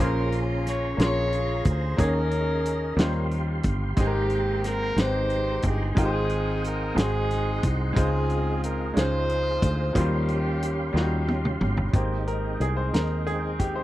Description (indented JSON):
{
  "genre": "slow gospel",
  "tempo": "60 BPM (dotted quarters)",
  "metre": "6/8",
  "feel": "straight",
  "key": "Ab major",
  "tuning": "A4 = 440 Hz",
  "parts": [
    { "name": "warm horn section", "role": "melody", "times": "0.0-11.3 s", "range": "Bb3 to Db5", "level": "-28 LUFS", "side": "equal", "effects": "none" },
    { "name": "bright grand piano", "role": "accompaniment", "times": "0.0-13.8 s", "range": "Ab2 to C6", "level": "-30 LUFS", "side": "left 1 dB", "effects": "none" },
    { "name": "tonewheel organ", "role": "sustained chords", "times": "0.0-13.8 s", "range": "Ab3 to Eb6", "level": "-34 LUFS", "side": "right 3 dB", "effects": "slow rotary speaker, overdrive, chorus vibrato" },
    { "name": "fingered electric bass", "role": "bass", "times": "0.0-13.8 s", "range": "G1 to Eb2", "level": "-26 LUFS", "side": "equal", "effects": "none" },
    { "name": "warm soul drum kit", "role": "drums", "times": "0.3-13.8 s", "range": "hi-hat, kick drum, snare drum, toms", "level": "-25 LUFS", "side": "equal", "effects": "none" }
  ],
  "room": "studio reverb",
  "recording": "dry, close 1970s-style studio recording",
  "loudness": "-22 LUFS",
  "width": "side -15 dB against mid",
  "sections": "0.0-11.9 A section; 11.9-13.8 B section",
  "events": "drum fill 10.9-11.9; grand piano solo 11.9-13.8",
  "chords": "0.0 Bbm9; 2.0 Eb7sus4; 3.0 Eb13; 4.0 Abmaj9; 6.0 Fm9/Ab; 7.0 Ab7; 8.0 Dbmaj9; 9.9 Eb13; 11.9 Abmaj7"
}